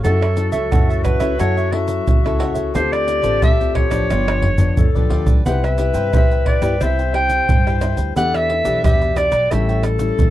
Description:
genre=samba and choro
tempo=89 BPM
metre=4/4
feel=straight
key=unclear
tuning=A4 = 439 Hz
part: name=bright clarinet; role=melody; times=0.0-10.3 s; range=A4 to G5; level=-20 LUFS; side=right 1 dB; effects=none
part: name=warm clarinet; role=second line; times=0.0-10.3 s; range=F4 to C5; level=-24 LUFS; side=left 12 dB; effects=none
part: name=cavaquinho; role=accompaniment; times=0.0-9.9 s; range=E4 to G5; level=-28 LUFS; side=right 5 dB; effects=none
part: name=nylon-string guitar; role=accompaniment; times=0.0-10.3 s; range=G2 to A4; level=-25 LUFS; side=left 5 dB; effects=none
part: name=upright bass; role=bass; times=0.0-10.3 s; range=G1 to G2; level=-21 LUFS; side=equal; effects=none
part: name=egg shaker, surdo, pandeiro and tamborim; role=percussion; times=0.0-10.3 s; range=none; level=-18 LUFS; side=right 1 dB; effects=none
room=light reverb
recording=dry, close 1970s-style studio recording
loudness=-14 LUFS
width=side -14 dB against mid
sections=0.0-10.3 A section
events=drum fill 4.1-5.5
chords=0.0 F#m7; 2.8 Dm7; 4.1 G7; 5.5 Cmaj7; 8.2 Em7; 9.5 A7

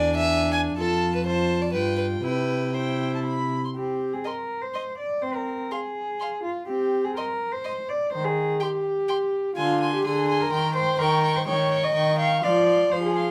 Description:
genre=quick classical-period movement for string quartet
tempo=124 BPM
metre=3/4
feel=straight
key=C major, C minor from 3.8 s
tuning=A4 = 440 Hz
part: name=rich violin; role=melody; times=0.0-13.3 s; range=G5 to Db6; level=-35 LUFS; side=equal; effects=none
part: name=rich violin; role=second line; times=0.0-13.3 s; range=A4 to Ab5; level=-31 LUFS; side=equal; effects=none
part: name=warm viola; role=accompaniment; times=0.0-13.3 s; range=D3 to F4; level=-30 LUFS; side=equal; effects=none
part: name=warm cello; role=bass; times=0.0-13.3 s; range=E2 to F5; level=-27 LUFS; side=equal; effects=none
room=light reverb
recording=none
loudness=-25 LUFS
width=mono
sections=0.0-3.8 A section; 3.8-13.3 B section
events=none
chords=0.0 E7; 0.8 F; 1.7 G7; 2.2 C; 3.8 C5; 5.2 Fm/C; 6.7 C5; 8.1 Cm/Eb (rootless); 9.6 Dm7b5; 10.5 Cm/Eb; 11.0 Eb7; 12.4 Fm

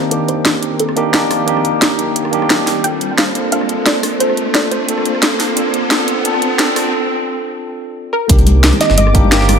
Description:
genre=liquid drum and bass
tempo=176 BPM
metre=4/4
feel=swing 53% on 16ths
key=C dorian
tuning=A4 = 441 Hz
part: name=soft round pluck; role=melody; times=0.0-9.6 s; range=A4 to G5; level=-20 LUFS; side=right 2 dB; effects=analog chorus, dub echo
part: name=tine electric piano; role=accompaniment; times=0.0-9.6 s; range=Bb3 to A4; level=-18 LUFS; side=equal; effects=slow stereo tremolo, low-pass filter, ping-pong delay
part: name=lush unison pad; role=sustained chords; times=0.0-9.6 s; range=Eb3 to D6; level=-22 LUFS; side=equal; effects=chorus, sidechain pumping
part: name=riser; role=sound effects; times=0.2-6.9 s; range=none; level=-23 LUFS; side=equal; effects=none
part: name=drum and bass drum kit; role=drums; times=0.1-9.6 s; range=hi-hat, rim click, snare drum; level=-16 LUFS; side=equal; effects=overdrive
part: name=sub bass with octave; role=bass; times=8.3-9.6 s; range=G1 to C2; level=-12 LUFS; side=equal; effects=none
part: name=electronic kick drum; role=drums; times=8.3-9.2 s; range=none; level=-12 LUFS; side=equal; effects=none
part: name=jungle sampler-style drum kit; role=drums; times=8.3-9.6 s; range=hi-hat, snare drum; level=-20 LUFS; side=equal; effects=high-pass filter on hats, high-pass filter on snare, high-pass filter on room
part: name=congas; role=percussion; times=8.5-9.6 s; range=none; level=-20 LUFS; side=left 4 dB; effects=none
room=moderate lush hall reverb, RT60 1.8 s, digital ambience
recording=high-pass filter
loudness=-12 LUFS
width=side -7 dB against mid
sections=0.0-8.3 A section; 8.3-9.6 B section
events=build-up 0.0-8.3; filter sweep on tine electric piano 0.0-8.3; filter sweep on synth pluck 0.0-8.3; riser 0.2-6.9; break 6.9-8.3; drop 8.3-9.6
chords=0.0 Cm9; 2.8 Bbmaj9; 8.1 N.C.; 8.3 Cm9

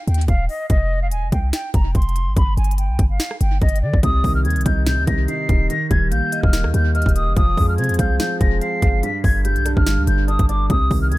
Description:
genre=hip hop, trap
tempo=144 BPM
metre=4/4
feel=half-time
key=C minor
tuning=A4 = 440 Hz
part: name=breathy concert flute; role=melody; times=0.0-11.2 s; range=D5 to C7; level=-24 LUFS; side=equal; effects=low-pass filter, analog delay
part: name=warm 808-style bass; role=bass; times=0.1-11.2 s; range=Eb1 to D3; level=-19 LUFS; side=equal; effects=none
part: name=trap drum kit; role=drums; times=0.1-11.2 s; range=hi-hat, kick drum, rim click, snare drum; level=-20 LUFS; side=equal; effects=none
part: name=dark concert grand piano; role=accompaniment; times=4.0-11.2 s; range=G2 to F5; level=-24 LUFS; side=right 1 dB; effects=low-pass filter
room=studio reverb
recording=echo-heavy mix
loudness=-16 LUFS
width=side -18 dB against mid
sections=0.0-4.0 A section; 4.0-11.2 B section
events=none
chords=0.0 Ebadd9; 0.7 F5; 2.4 N.C.; 4.0 Cm; 5.7 Eb; 7.4 Fm; 9.0 G5

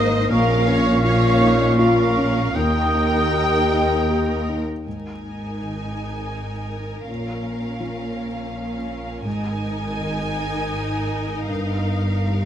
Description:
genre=cinematic, emotional film score for orchestra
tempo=81 BPM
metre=3/4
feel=uneven beats, rubato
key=unclear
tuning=A4 = 440 Hz
part: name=rich studio violin section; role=melody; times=0.0-12.5 s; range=Eb5 to Ab5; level=-29 LUFS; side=left 2 dB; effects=none
part: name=flute section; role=second line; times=0.0-4.5 s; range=Db6 to Eb6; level=-26 LUFS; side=right 3 dB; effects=none
part: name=rich symphonic violin section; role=second line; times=0.0-12.5 s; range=Bb4 to Db5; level=-30 LUFS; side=right 1 dB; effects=none
part: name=warm clarinet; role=second line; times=0.0-4.5 s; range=Bb4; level=-29 LUFS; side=left 2 dB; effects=none
part: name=felt-muted upright piano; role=accompaniment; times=0.0-12.5 s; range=Eb2 to Eb5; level=-27 LUFS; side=left 2 dB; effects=none
part: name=warm studio viola section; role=accompaniment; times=0.0-12.5 s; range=Db4 to F4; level=-31 LUFS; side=right 2 dB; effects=none
part: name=warm French horn section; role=sustained chords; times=0.0-4.5 s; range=Bb3 to G4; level=-25 LUFS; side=left 4 dB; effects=none
part: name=rich studio cello section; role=bass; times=0.0-12.5 s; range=Eb2 to Bb2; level=-25 LUFS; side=right 1 dB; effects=none
part: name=rich studio double bass section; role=bass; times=0.0-12.5 s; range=G1 to Eb2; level=-27 LUFS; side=right 1 dB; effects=none
part: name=clear oboe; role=second line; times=0.3-4.5 s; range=F5 to G5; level=-30 LUFS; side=right 1 dB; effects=none
room=moderate scoring stage reverb, RT60 1.7 s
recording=vinyl crackle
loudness=-19 LUFS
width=side -10 dB against mid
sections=0.0-4.9 A section; 4.9-12.5 B section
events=none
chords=0.3 Bbm; 2.6 Eb; 4.9 Absus2; 7.1 Bbm; 9.3 Absus2; 11.5 Ebadd9/G

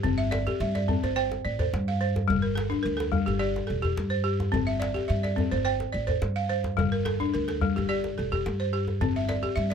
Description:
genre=west african traditional, West African string and xylophone music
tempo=107 BPM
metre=4/4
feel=straight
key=G dorian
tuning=A4 = 440 Hz
part: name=balafon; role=arpeggios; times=0.0-9.7 s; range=G3 to G5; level=-27 LUFS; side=left 1 dB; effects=none
part: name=upright bass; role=bass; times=0.0-9.7 s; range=E1 to G2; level=-29 LUFS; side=right 1 dB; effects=none
part: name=djembe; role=percussion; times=0.0-9.7 s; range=none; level=-32 LUFS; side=left 1 dB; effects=none
room=little or no reverb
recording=close, detailed microphones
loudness=-25 LUFS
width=side -7 dB against mid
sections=0.0-9.7 A section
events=none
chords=0.0 C/G; 2.3 Gm; 4.5 C/G; 6.8 Gm; 9.0 C/G

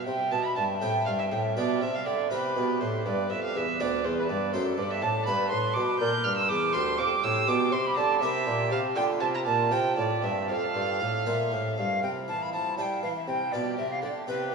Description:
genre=classical, baroque-style sonata movement with continuo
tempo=80 BPM (dotted quarters)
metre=6/8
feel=straight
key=C major, F major from 6.0 s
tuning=A4 = 440 Hz
part: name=dark violin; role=second line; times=0.0-14.5 s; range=E4 to G6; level=-28 LUFS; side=right 3 dB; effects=none
part: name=harpsichord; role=accompaniment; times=0.0-14.5 s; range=D2 to D5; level=-32 LUFS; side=equal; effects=none
part: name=mellow bassoon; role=bass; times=0.0-14.5 s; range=D2 to G3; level=-31 LUFS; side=right 3 dB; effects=none
part: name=bright alto recorder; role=melody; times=0.1-14.5 s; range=F4 to B5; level=-33 LUFS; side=left 4 dB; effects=none
room=wet cathedral reverb, RT60 7.2 s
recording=in a vast, echoing space, studio ambience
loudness=-25 LUFS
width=side -4 dB against mid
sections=0.1-12.0 A section; 12.0-14.5 A section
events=none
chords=0.1 C; 1.6 G7/B; 2.3 C; 3.1 G; 4.5 D/F#; 5.3 G; 6.0 Gm; 7.5 G7/B; 8.2 C7; 9.0 Dm; 9.7 C; 10.5 F; 12.0 C; 13.5 G7/B

